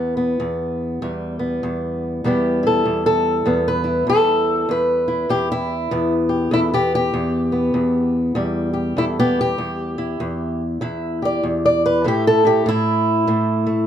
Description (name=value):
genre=acoustic country blues, solo or duo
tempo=98 BPM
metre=4/4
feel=swing 62% on 8ths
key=E minor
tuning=A4 = 440 Hz
part: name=fingerpicked old ladder-braced acoustic guitar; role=solo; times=0.0-13.9 s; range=E2 to D5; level=-17 LUFS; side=equal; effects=none
room=moderate studio reverb, RT60 0.5 s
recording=none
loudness=-17 LUFS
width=side -9 dB against mid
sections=0.0-2.2 A section; 2.2-13.9 B section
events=steel-string acoustic guitar solo 2.2-13.9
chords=0.0 Em; 12.0 A5